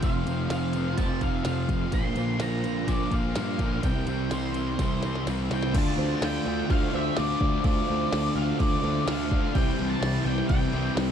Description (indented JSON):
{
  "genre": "rock, shoegaze and dream pop",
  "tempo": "126 BPM",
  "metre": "4/4",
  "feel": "straight",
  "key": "unclear",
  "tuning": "A4 = 440 Hz",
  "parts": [
    { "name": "octave-fuzz lead guitar", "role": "melody", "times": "0.0-10.9 s", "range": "C5 to C6", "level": "-34 LUFS", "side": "left 2 dB", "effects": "distortion, analog delay" },
    { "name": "picked twelve-string acoustic guitar", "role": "arpeggios", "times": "0.0-11.1 s", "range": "E3 to Bb4", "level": "-38 LUFS", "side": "right 11 dB", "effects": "analog chorus, analog delay" },
    { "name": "biting overdriven guitar", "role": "riff", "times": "0.0-11.1 s", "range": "F2 to D4", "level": "-35 LUFS", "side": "equal", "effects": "none" },
    { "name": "crunchy overdriven guitar", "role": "riff", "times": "0.0-11.1 s", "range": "F2 to F4", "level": "-33 LUFS", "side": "right 12 dB", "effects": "reverse reverb" },
    { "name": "thick fuzz guitar", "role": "riff", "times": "0.0-11.1 s", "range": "F2 to D4", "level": "-31 LUFS", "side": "left 11 dB", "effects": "distortion, analog chorus" },
    { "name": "fuzz picked electric bass", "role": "bass", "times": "0.0-11.1 s", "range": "F1 to G2", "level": "-30 LUFS", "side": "equal", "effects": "overdrive" },
    { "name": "minimal click drum kit", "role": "drums", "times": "0.0-11.1 s", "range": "crash cymbal, kick drum, ride cymbal, snare drum", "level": "-29 LUFS", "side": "equal", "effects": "none" }
  ],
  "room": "digital ambience",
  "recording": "dark, warm production",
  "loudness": "-24 LUFS",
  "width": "side -8 dB against mid",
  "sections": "0.0-5.7 A section; 5.7-11.1 B section",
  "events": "drum fill 4.8-5.7",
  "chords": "0.0 F; 1.9 Bbadd9; 3.8 C; 5.7 Dm7; 9.6 Cadd9"
}